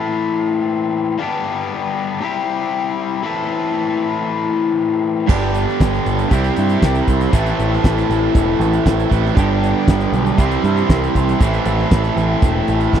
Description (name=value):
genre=classic rock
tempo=118 BPM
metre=4/4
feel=straight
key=A minor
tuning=A4 = 439 Hz
part: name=overdriven electric guitar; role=riff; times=0.0-13.0 s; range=G2 to A4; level=-19 LUFS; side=left 6 dB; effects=none
part: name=bright tonewheel organ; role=sustained chords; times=5.3-13.0 s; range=B3 to E5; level=-27 LUFS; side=right 5 dB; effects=none
part: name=distorted electric guitar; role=riff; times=5.3-13.0 s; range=G2 to C4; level=-20 LUFS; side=right 16 dB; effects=overdrive
part: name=growling picked electric bass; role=bass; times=5.3-13.0 s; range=E1 to G2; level=-19 LUFS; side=right 1 dB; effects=overdrive
part: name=damped 70s drum kit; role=drums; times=5.3-13.0 s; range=crash cymbal, hi-hat, kick drum, snare drum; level=-15 LUFS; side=right 1 dB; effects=none
room=little or no reverb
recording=dry, close 1970s-style studio recording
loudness=-15 LUFS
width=side -9 dB against mid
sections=0.0-13.0 A section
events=none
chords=0.0 Am; 1.2 G; 2.2 C; 3.2 Am; 5.3 G; 6.3 Cadd9; 7.3 Am; 9.4 G; 10.4 Cadd9; 11.4 Am